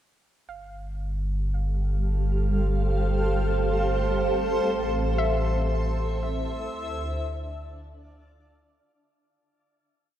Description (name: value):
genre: ambient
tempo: 58 BPM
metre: 4/4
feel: straight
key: unclear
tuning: A4 = 440 Hz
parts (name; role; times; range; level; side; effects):
- granular cloud pad; sustained chords; 2.0-8.9 s; G3 to A5; -27 LUFS; right 1 dB; built-in reverb
- soft round pluck; arpeggios; 0.5-7.2 s; E5 to F5; -35 LUFS; left 6 dB; chorus, vintage 12-bit sampler grit, analog delay
- warm sub bass; bass; 0.5-8.8 s; G1 to D2; -27 LUFS; equal; none
room: moderate lush hall reverb, RT60 2.6 s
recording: dreamy mix soaked in reverb, cassette tape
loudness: -23 LUFS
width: side -11 dB against mid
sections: 0.5-8.8 A section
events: fade-in on ambient pad 0.5-8.8; fade-in on synth pluck 0.5-8.8; fade-out 4.7-8.8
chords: 0.5 G7sus4; 4.7 Am; 6.7 Dmadd9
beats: | 0.49 1.54 2.58 3.62 | 4.65 5.69 6.74 7.79